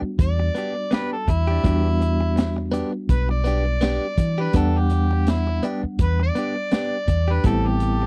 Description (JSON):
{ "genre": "straight-eighth soul blues", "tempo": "83 BPM", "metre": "4/4", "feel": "swing 56% on 16ths", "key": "E minor", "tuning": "A4 = 440 Hz", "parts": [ { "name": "mellow reed electric piano", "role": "accompaniment", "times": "0.0-8.1 s", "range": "G3 to F#5", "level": "-30 LUFS", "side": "equal", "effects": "fast tremolo" }, { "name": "direct-recorded clean electric guitar", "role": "stabs", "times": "0.0-8.1 s", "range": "E3 to G4", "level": "-30 LUFS", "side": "equal", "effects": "phaser" }, { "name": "vintage muted fingered electric bass", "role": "bass", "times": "0.0-8.1 s", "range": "A1 to E3", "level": "-24 LUFS", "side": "equal", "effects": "none" }, { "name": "overdriven harmonica", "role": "second line", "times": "0.2-8.1 s", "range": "E4 to D5", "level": "-29 LUFS", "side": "equal", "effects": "none" }, { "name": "crunchy breakbeat drum kit", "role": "drums", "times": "0.2-8.0 s", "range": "hi-hat, kick drum, snare drum", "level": "-24 LUFS", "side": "equal", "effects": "none" }, { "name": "clear horn section", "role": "sustained chords", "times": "7.4-8.1 s", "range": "A4 to A5", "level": "-37 LUFS", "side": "equal", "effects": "none" } ], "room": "little or no reverb", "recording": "dry, close 1970s-style studio recording", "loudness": "-22 LUFS", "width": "mono", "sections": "0.0-8.1 A section", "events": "harmonica solo 0.0-8.1", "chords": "0.0 Em7; 7.5 Am7" }